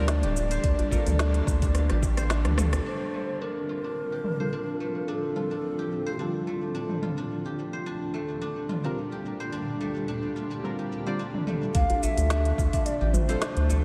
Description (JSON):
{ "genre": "organic downtempo", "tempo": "108 BPM", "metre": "4/4", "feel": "swing 54% on 16ths", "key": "D minor", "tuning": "A4 = 440 Hz", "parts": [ { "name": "breathy mellow low ney", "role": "melody", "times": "0.0-7.0, 11.7-13.8 s", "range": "F4 to F5", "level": "-35 LUFS", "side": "equal", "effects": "delay" }, { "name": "deep mellow chord stab", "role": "accompaniment", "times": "0.0-13.4 s", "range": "D3 to D5", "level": "-40 LUFS", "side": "equal", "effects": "none" }, { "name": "granular cloud pad", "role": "sustained chords", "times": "0.1-13.8 s", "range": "D2 to G4", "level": "-38 LUFS", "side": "equal", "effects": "built-in reverb, vintage 12-bit sampler grit, sidechain pumping" }, { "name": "guzheng", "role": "arpeggios", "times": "0.0-13.8 s", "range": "A3 to C5", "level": "-36 LUFS", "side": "equal", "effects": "low-pass filter, delay" }, { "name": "round analog bass", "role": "bass", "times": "0.0-2.8, 11.7-13.8 s", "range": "D1 to D2", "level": "-27 LUFS", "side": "equal", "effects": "sidechain pumping" }, { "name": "organic electronic drum kit", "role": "drums", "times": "0.1-13.8 s", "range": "cabasa, hi-hat, rim click, snare drum, toms", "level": "-36 LUFS", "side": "equal", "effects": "overdrive, low-pass filter on hats, low-pass filter on perc, low-pass filter on snare, low-pass filter on toms, low-pass filter on room" }, { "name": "djembe", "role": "percussion", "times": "0.4-2.8, 11.9-13.8 s", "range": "none", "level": "-35 LUFS", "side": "equal", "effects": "none" }, { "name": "electronic kick drum", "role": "drums", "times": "0.6-2.1, 11.7-12.8 s", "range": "none", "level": "-29 LUFS", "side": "equal", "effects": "overdrive" } ], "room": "moderate cathedral reverb, RT60 5.7 s", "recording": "dreamy mix soaked in reverb", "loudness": "-28 LUFS", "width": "mono", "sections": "0.0-2.9 A section; 2.9-11.7 B section; 11.7-13.8 A section", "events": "drum fill 1.7-2.9; kick drops out 2.3-2.9; band accent 2.7; filter sweep on synth stab 2.9-11.7", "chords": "0.0 Gm/D; 2.9 Dm7; 7.3 Gm/D; 11.7 Dm7", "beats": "0.08 | 0.64 1.19 1.75 2.30 | 2.86 3.41 3.97 4.53 | 5.08 5.64 6.19 6.75 | 7.30 7.86 8.41 8.97 | 9.53 10.08 10.64 11.19 | 11.75 12.30 12.86 13.41" }